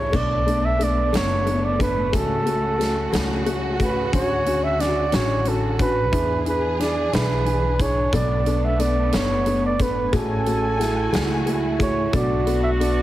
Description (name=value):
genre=six-eight pop ballad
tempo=60 BPM (dotted quarters)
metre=6/8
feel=straight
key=unclear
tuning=A4 = 440 Hz
part: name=mellow flugelhorn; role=melody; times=0.0-13.0 s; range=A4 to E5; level=-24 LUFS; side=right 2 dB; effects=none
part: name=felt-muted upright piano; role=accompaniment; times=0.0-13.0 s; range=A3 to A4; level=-26 LUFS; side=left 3 dB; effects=none
part: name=warm studio string section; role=sustained chords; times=0.0-13.0 s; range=C#3 to G#5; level=-29 LUFS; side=equal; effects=none
part: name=upright bass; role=bass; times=0.0-13.0 s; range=F#1 to E2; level=-25 LUFS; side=equal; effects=none
part: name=huge arena drum kit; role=drums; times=0.1-13.0 s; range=hi-hat, kick drum, snare drum, splash cymbal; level=-27 LUFS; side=equal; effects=none
part: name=dark French horn section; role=second line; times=8.1-13.0 s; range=B3 to F#4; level=-27 LUFS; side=right 2 dB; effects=slapback echo
room=light reverb, small room ambience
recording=heavily compressed radio sound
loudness=-19 LUFS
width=side -14 dB against mid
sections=0.0-13.0 A section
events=none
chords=0.1 Bm7; 2.1 F#m/C#; 4.1 Dmaj7; 6.1 E7; 8.1 Bm7; 10.1 F#madd9/A; 12.1 Bm7